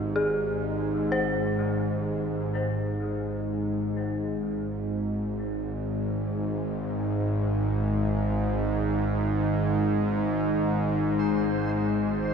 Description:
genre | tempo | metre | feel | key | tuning
dark ambient drone | free time | none | none | Ab major | A4 = 440 Hz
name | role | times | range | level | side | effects
dark detuned synth bell | arpeggios | 0.0-12.3 s | C4 to C5 | -31 LUFS | left 1 dB | chorus, dub echo
bowed-like drone | drone | 0.0-12.3 s | Ab1 to Ab2 | -25 LUFS | equal | built-in reverb
backwards swelling texture | texture | 11.2-12.3 s | C5 | -36 LUFS | right 4 dB | built-in reverb
room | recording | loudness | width
wet plate reverb, RT60 3.2 s | echo-heavy mix | -25 LUFS | side -6 dB against mid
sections
0.0-12.3 A section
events
none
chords
0.0 Abmaj7

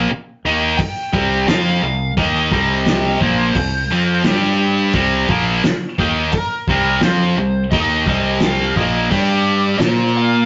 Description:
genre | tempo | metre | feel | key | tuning
classic rock | 87 BPM | 4/4 | straight | C minor | A4 = 443 Hz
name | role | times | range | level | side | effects
lead guitar through a small cranked amp | melody | 0.0-10.5 s | Bb4 to G5 | -26 LUFS | equal | wah, overdrive
distorted electric guitar | riff | 0.0-10.5 s | Bb2 to Bb4 | -19 LUFS | equal | overdrive
growling fingered electric bass | bass | 0.0-10.4 s | Bb1 to Bb2 | -23 LUFS | equal | overdrive
cloth-damped thuddy drum kit | drums | 0.8-10.0 s | hi-hat, kick drum, snare drum | -23 LUFS | equal | none
room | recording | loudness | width
moderate small room reverb, RT60 0.5 s | rough rehearsal-room recording, tube saturation, nothing above 7.7 kHz | -17 LUFS | mono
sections
0.0-10.5 A section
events
none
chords
0.0 Cm; 4.3 G5; 4.9 Cm; 9.1 G5; 9.8 Bb5

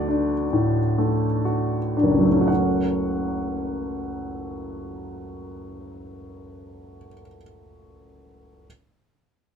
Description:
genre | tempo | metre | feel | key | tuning
neoclassical minimalist piano | 56-71 BPM | 4/4 | rubato | F# minor | A4 = 440 Hz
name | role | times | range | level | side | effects
warm upright piano | solo | 0.0-8.7 s | F#1 to F#5 | -22 LUFS | equal | none
room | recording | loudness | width
moderate small room reverb, RT60 0.5 s | minimal, uncompressed stereo recording | -20 LUFS | side -8 dB against mid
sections
0.0-2.5 A section; 2.5-6.5 B section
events
slowing down 0.0-2.5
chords
0.0 D; 2.5 F#m

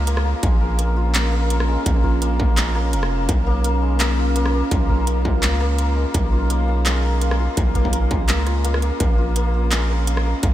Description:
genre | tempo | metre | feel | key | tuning
half-time drum and bass | 168 BPM | 4/4 | swing 55% on 16ths, half-time | unclear | A4 = 441 Hz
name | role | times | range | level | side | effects
santur | arpeggios | 0.0-10.5 s | Ab3 to Bb4 | -25 LUFS | left 3 dB | analog delay
long sustained 808-style bass | bass | 0.0-10.5 s | F1 to Db2 | -20 LUFS | equal | none
metallic inharmonic drone | texture | 0.0-10.5 s | Db4 | -29 LUFS | right 2 dB | chorus, built-in reverb
industrial drum kit | drums | 0.1-10.5 s | handclaps, hi-hat, rim click | -26 LUFS | equal | none
electronic kick drum | drums | 0.4-10.5 s | none | -21 LUFS | equal | distortion
room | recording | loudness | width
light reverb, digital ambience | none | -17 LUFS | side -13 dB against mid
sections
0.0-10.5 A section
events
none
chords
0.0 Bbm; 3.3 Bsus2; 9.0 Bbm

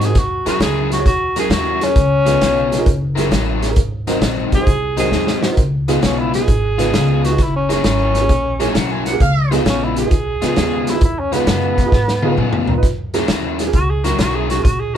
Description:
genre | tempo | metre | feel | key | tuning
electric blues shuffle | 132 BPM | 4/4 | swing 68% on 8ths | Db mixolydian | A4 = 441 Hz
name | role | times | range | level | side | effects
breathy tenor saxophone | melody | 0.0-15.0 s | Cb4 to Ab4 | -19 LUFS | equal | none
clear upright piano | accompaniment | 0.0-15.0 s | Bb3 to Bb5 | -23 LUFS | right 5 dB | none
crunchy overdriven guitar | riff | 0.0-15.0 s | Ab2 to Bb4 | -21 LUFS | left 4 dB | none
upright bass | bass | 0.0-15.0 s | Gb1 to Ab2 | -21 LUFS | equal | none
vintage drum kit | drums | 0.0-14.8 s | hi-hat, kick drum, snare drum, toms | -18 LUFS | equal | none
mellow harmonica | second line | 8.6-9.5 s | F5 to Ab5 | -22 LUFS | right 4 dB | overdrive
room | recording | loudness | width
light reverb | band playing live in one room | -14 LUFS | side -9 dB against mid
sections
0.0-5.6 A section; 5.6-15.0 B section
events
tenor saxophone solo 0.0-5.6; drum fill 5.1-5.6, 11.9-12.8; upright piano fill 11.9-12.8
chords
0.2 Gb7; 2.0 Db7; 2.9 Gb7; 3.8 Ab7; 5.6 Db7; 7.4 Gb7; 9.2 Db7; 12.8 Gb7

